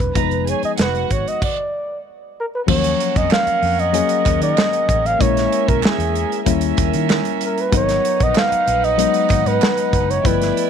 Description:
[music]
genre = lush 1970s-style soul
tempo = 95 BPM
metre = 4/4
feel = straight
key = Eb minor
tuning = A4 = 440 Hz
[part]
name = breathy flugelhorn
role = melody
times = 0.0-10.7 s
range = Ab4 to F5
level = -20 LUFS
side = equal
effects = none
[part]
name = barky reed electric piano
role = accompaniment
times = 0.0-10.7 s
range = F3 to Bb4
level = -23 LUFS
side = left 17 dB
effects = overdrive
[part]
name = vintage muted fingered electric bass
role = bass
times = 0.0-10.5 s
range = Fb1 to Eb3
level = -23 LUFS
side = equal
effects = none
[part]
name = modern studio drum kit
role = drums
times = 0.0-10.7 s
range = crash cymbal, hi-hat, kick drum, snare drum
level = -20 LUFS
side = right 1 dB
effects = none
[part]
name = warm studio violin section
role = second line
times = 0.1-10.7 s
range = Db4 to Bb5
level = -24 LUFS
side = right 14 dB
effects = none
[part]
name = group handclap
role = percussion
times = 3.3-9.8 s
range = none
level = -29 LUFS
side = right 17 dB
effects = none
[part]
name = vibraphone with medium hard mallets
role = texture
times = 3.3-10.7 s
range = Gb3 to Db5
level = -34 LUFS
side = right 16 dB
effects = none
[sound]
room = little or no reverb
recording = 1960s-style stereo with parts hard left and right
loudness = -15 LUFS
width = side -7 dB against mid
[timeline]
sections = 0.0-2.7 A section; 2.7-10.7 B section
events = stop 1.4-2.7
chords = 0.2 Fm7b5; 1.4 N.C.; 2.7 Ebm9; 5.2 Bbm7b5; 6.5 Eb7b9; 7.7 Abm9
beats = | 0.15 0.79 1.42 2.05 | 2.68 3.31 3.94 4.57 | 5.20 5.83 6.46 7.09 | 7.72 8.36 8.99 9.62 | 10.25

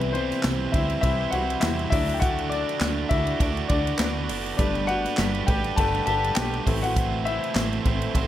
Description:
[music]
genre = piano-driven pop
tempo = 101 BPM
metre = 4/4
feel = swing 56% on 16ths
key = G major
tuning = A4 = 440 Hz
[part]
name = warm concert grand piano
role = accompaniment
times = 0.0-8.3 s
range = E3 to A5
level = -27 LUFS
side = left 4 dB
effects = plate reverb
[part]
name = tonewheel organ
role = sustained chords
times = 0.0-8.3 s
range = C3 to B4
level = -36 LUFS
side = right 1 dB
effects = none
[part]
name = crunchy overdriven guitar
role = riff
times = 0.0-8.3 s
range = A2 to D5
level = -29 LUFS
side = right 8 dB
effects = none
[part]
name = plucky analog bass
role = bass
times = 0.0-8.3 s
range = F#1 to E2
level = -29 LUFS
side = equal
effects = none
[part]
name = natural country drum kit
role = drums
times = 0.0-8.3 s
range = handclaps, hi-hat, kick drum, ride cymbal, snare drum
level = -27 LUFS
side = equal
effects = none
[sound]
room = light reverb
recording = none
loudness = -22 LUFS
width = side -12 dB against mid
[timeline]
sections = 0.0-8.3 A section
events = grand piano solo 0.0-8.3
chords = 0.0 C; 1.9 D; 4.6 Gadd9; 6.7 Am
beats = 0.44 1.03 1.62 | 2.22 2.81 3.40 4.00 | 4.59 5.18 5.78 6.37 | 6.96 7.56 8.15

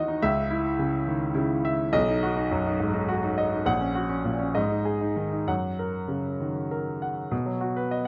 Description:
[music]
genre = classical, virtuoso piano study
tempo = 64-71 BPM (dotted quarters)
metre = 6/8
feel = rubato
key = B major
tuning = A4 = 440 Hz
[part]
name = clear grand piano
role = solo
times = 0.0-8.1 s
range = A#1 to F#5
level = -27 LUFS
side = equal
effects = none
[sound]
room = moderate recital hall reverb, RT60 1.6 s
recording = close, detailed microphones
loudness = -27 LUFS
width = mono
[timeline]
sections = 0.0-7.3 A section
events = none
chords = 0.2 C#madd9; 1.9 B; 3.7 F#/A#; 4.6 G#5; 5.5 F#; 7.3 B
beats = | 0.22 1.07 | 1.94 2.81 | 3.67 4.56 | 5.48 6.40 | 7.32

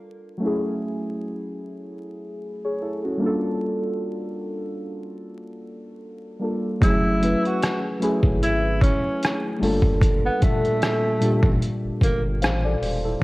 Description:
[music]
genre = lo-fi hip hop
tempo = 75 BPM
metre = 4/4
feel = swing 56% on 16ths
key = unclear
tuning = A4 = 440 Hz
[part]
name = muted felt-like synth keys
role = accompaniment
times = 0.0-13.2 s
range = Bb2 to F5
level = -24 LUFS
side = equal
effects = chorus, phaser, cassette tape, low-pass filter
[part]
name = breathy tenor saxophone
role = melody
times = 6.8-12.2 s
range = A3 to F#4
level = -26 LUFS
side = equal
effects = low-pass filter
[part]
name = round analog bass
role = bass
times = 6.8-13.2 s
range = E1 to A1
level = -26 LUFS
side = equal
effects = none
[part]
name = trip hop sampler-style drum kit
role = drums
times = 6.8-13.0 s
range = hi-hat, kick drum, rim click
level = -22 LUFS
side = equal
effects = overdrive, vintage 12-bit sampler grit
[sound]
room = light reverb, digital ambience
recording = worn, warbling old tape, cassette tape, vinyl crackle, warbly pitch drift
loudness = -20 LUFS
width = side -21 dB against mid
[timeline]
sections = 0.0-6.8 A section; 6.8-13.2 B section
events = none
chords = 0.4 F#m9; 3.2 Gm9; 6.8 F#m9; 9.6 Gm9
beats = | 0.41 1.21 2.01 2.81 | 3.61 4.41 5.21 6.01 | 6.81 7.61 8.41 9.21 | 10.01 10.81 11.61 12.41 | 13.21

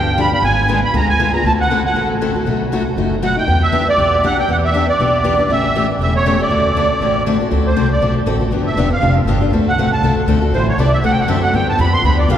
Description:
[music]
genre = acoustic string swing (jazz manouche)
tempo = 238 BPM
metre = 4/4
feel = swing 55% on 8ths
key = D mixolydian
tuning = A4 = 439 Hz
[part]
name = musette accordion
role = melody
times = 0.0-12.4 s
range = C5 to C6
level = -17 LUFS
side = right 2 dB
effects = none
[part]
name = picked steel-string acoustic guitar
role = accompaniment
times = 0.0-12.4 s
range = B2 to A4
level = -18 LUFS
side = left 3 dB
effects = none
[part]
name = upright bass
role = bass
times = 0.0-12.4 s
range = E1 to G2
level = -18 LUFS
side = equal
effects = none
[sound]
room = wet cathedral reverb, RT60 6.7 s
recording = recorded in a church or concert hall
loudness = -13 LUFS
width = side -10 dB against mid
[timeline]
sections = 0.0-7.5 A section; 7.5-12.4 B section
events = accordion solo 7.5-12.4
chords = 0.4 G#dim7; 1.4 D7; 2.5 B7; 3.5 Em7; 5.5 A7; 6.5 D7; 8.5 G7; 9.5 D7; 10.5 Am7; 11.0 D7; 11.5 G7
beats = 0.18 | 0.43 0.68 0.94 1.19 | 1.44 1.70 1.95 2.20 | 2.46 2.71 2.96 3.22 | 3.47 3.72 3.98 4.23 | 4.48 4.73 4.99 5.24 | 5.49 5.74 6.00 6.25 | 6.50 6.75 7.00 7.26 | 7.51 7.76 8.01 8.27 | 8.52 8.77 9.02 9.27 | 9.52 9.78 10.03 10.28 | 10.53 10.78 11.03 11.29 | 11.54 11.79 12.04 12.29

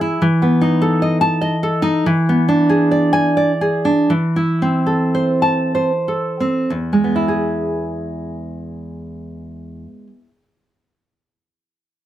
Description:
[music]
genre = romantic piece for solo classical guitar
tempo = 59-99 BPM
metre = 3/4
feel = rubato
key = E major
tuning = A4 = 440 Hz
[part]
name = nylon-string guitar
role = solo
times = 0.0-10.4 s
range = E2 to A5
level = -15 LUFS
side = equal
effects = none
[sound]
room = moderate studio reverb, RT60 0.5 s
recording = none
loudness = -14 LUFS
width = side -12 dB against mid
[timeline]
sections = 0.0-6.7 A section; 6.7-12.1 B section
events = slowing down 1.1-6.7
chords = 0.2 B7/E; 2.1 E7; 4.1 Am/E; 6.7 E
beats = | 0.21 0.83 1.44 | 2.07 2.72 3.40 | 4.12 4.88 5.74 | 6.71 7.61 8.52 | 9.44 10.34

